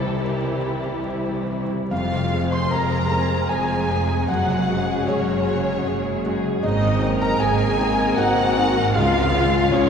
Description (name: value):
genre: cinematic, emotional film score for orchestra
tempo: 76 BPM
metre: 3/4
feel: rubato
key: F phrygian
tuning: A4 = 440 Hz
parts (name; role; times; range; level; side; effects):
- dark studio violin section; melody; 0.0-9.9 s; F4 to Bb4; -32 LUFS; left 3 dB; none
- warm symphonic violin section; second line; 0.0-9.9 s; C4 to C6; -26 LUFS; left 2 dB; none
- felt-muted upright piano; accompaniment; 0.0-9.9 s; C2 to C6; -24 LUFS; equal; none
- warm symphonic viola section; accompaniment; 0.0-9.9 s; E3 to C5; -29 LUFS; right 1 dB; none
- concert harp; arpeggios; 0.0-9.9 s; F2 to C6; -29 LUFS; left 4 dB; none
- rich symphonic cello section; bass; 0.0-9.9 s; C2 to Ab2; -27 LUFS; right 4 dB; none
- warm French horn section; sustained chords; 1.9-9.9 s; Ab3 to F4; -27 LUFS; left 3 dB; none
- warm symphonic double bass section; bass; 1.9-9.9 s; F1 to Db2; -28 LUFS; right 3 dB; none
room: wet cathedral reverb, RT60 5.7 s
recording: recorded in a church or concert hall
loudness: -18 LUFS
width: side -7 dB against mid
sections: 0.0-1.9 A section; 1.9-9.9 B section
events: none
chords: 0.0 C7; 1.9 Fm; 4.3 Gbsus2; 6.6 Abadd9; 9.0 Db